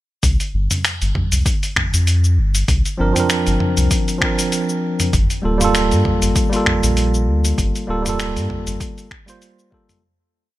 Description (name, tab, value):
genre	sunset chillout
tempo	98 BPM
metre	4/4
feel	swing 56% on 16ths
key	G minor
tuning	A4 = 440 Hz
part	round analog bass	bass	0.2-8.8 s	D1 to G2	-17 LUFS	equal	none
part	dusty soul sampler-style drum kit	drums	0.2-10.0 s	finger snaps, hi-hat, shaker, toms	-21 LUFS	equal	overdrive
part	electronic kick drum	drums	0.2-9.9 s	none	-21 LUFS	equal	overdrive
part	bright tine electric piano	accompaniment	3.0-10.0 s	F3 to C5	-19 LUFS	right 2 dB	auto-pan, digital delay
room	little or no reverb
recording	none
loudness	-15 LUFS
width	side -16 dB against mid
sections	0.2-10.0 groove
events	fade-out 6.8-10.0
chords	0.2 C9sus4; 5.1 Gm9